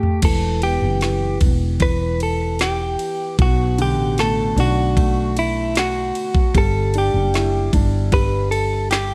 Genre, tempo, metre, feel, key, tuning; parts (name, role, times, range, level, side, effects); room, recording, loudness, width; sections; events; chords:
pop ballad; 76 BPM; 4/4; straight; A4 = 441 Hz
direct-recorded clean electric guitar; melody; 0.0-9.1 s; E4 to B4; -24 LUFS; equal
warm concert grand piano; accompaniment; 0.0-9.1 s; B2 to E4; -27 LUFS; equal
smooth R&B drum kit; drums; 0.0-9.1 s; crash cymbal, kick drum, ride cymbal, snare drum, toms; -23 LUFS; equal
woody fretless electric bass; bass; 0.2-9.1 s; E1 to B1; -23 LUFS; equal
digital ambience; dark, warm production; -19 LUFS; mono
0.2-9.1 A section
drum fill 0.0
0.2 Em; 3.4 Bm7; 6.5 G5